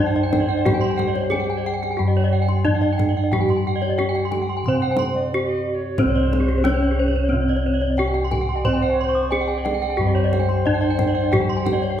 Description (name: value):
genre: Balinese gamelan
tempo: 90 BPM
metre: 4/4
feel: straight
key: C pelog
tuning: A4 = 440 Hz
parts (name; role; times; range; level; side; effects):
- gamelan-type bronze metallophone; melody; 0.0-12.0 s; C4 to C5; -23 LUFS; right 1 dB; none
- mellow alto recorder; second line; 0.0-11.8 s; C5 to G5-43c; -28 LUFS; left 1 dB; none
- gamelan-type bronze metallophone; accompaniment; 0.0-12.0 s; C3 to C4; -29 LUFS; left 3 dB; none
- gamelan-type bronze metallophone; arpeggios; 0.0-12.0 s; G4-45c to D6+50c; -27 LUFS; left 4 dB; none
- gamelan-type bossed gongs; bass; 0.0-12.0 s; C2 to C5; -23 LUFS; equal; none
- gamelan-type bronze metallophone; arpeggios; 0.1-11.8 s; Ab4-40c to Db6; -28 LUFS; right 5 dB; none
- kendang; percussion; 0.2-11.9 s; none; -28 LUFS; equal; none
room: wet recital hall reverb, RT60 1.7 s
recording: heard from further back in the room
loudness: -18 LUFS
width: side -10 dB against mid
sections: 0.0-12.0 A section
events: none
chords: none